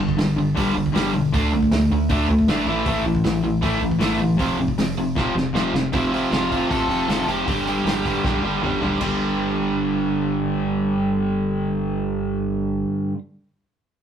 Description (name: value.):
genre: punk rock.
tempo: 156 BPM.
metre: 4/4.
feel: straight.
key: unclear.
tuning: A4 = 442 Hz.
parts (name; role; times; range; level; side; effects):
biting overdriven guitar; riff; 0.0-13.2 s; F2 to D4; -24 LUFS; right 6 dB; none.
distorted electric guitar; riff; 0.0-13.2 s; F2 to D4; -22 LUFS; left 4 dB; distortion.
rubbery square bass; bass; 0.0-12.9 s; D1 to D2; -29 LUFS; right 1 dB; none.
loose indie drum kit; drums; 0.1-9.1 s; crash cymbal, hi-hat, kick drum, snare drum, toms; -27 LUFS; equal; none.
biting lead guitar; melody; 5.9-8.6 s; E4 to A5; -27 LUFS; equal; overdrive.
room: moderate studio reverb, RT60 0.6 s.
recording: rough rehearsal-room recording.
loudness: -19 LUFS.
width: side -8 dB against mid.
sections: 0.0-5.9 A section; 5.9-9.0 B section; 9.0-12.1 C section.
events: drum fill 5.2-5.9, 8.2-9.0.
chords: 0.0 G5; 1.3 D5; 2.7 A5; 4.4 F5; 5.9 F; 7.5 G5.